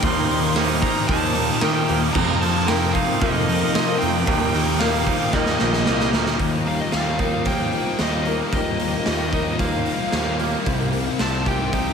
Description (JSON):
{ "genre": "rock, shoegaze and dream pop", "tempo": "113 BPM", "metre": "4/4", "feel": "straight", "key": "Eb major", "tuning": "A4 = 440 Hz", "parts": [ { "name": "nasal lead guitar with a parked wah", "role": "melody", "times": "0.0-11.9 s", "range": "Eb5 to C6", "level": "-27 LUFS", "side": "left 1 dB", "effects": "overdrive, ping-pong delay" }, { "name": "dark analog pad", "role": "sustained chords", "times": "0.0-11.9 s", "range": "Eb4 to Bb5", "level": "-32 LUFS", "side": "equal", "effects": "none" }, { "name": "picked twelve-string acoustic guitar", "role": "arpeggios", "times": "0.0-11.9 s", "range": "F4 to C5", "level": "-31 LUFS", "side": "left 6 dB", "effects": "analog chorus, ping-pong delay" }, { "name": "thick fuzz guitar", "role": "riff", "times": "0.0-11.9 s", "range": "Eb2 to G4", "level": "-26 LUFS", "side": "left 9 dB", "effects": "distortion, analog chorus" }, { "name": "twangy electric guitar", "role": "riff", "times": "0.0-11.9 s", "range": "Eb2 to G4", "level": "-25 LUFS", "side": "right 9 dB", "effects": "reverse reverb" }, { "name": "fuzz picked electric bass", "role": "bass", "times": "0.0-11.9 s", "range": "Bb1 to F3", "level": "-26 LUFS", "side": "right 1 dB", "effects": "overdrive" }, { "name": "raw garage drum kit", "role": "drums", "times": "0.0-11.9 s", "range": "crash cymbal, hi-hat, kick drum, snare drum", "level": "-24 LUFS", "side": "right 1 dB", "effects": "none" } ], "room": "wet huge ambient reverb, RT60 8.2 s", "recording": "dreamy mix soaked in reverb", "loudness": "-18 LUFS", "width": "side -6 dB against mid", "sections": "0.0-6.4 A section; 6.4-11.9 B section", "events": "drum fill 5.3-6.4", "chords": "0.0 Eb6; 2.2 F7sus4; 4.3 Ebadd9; 6.4 Eb69; 10.7 Cm7" }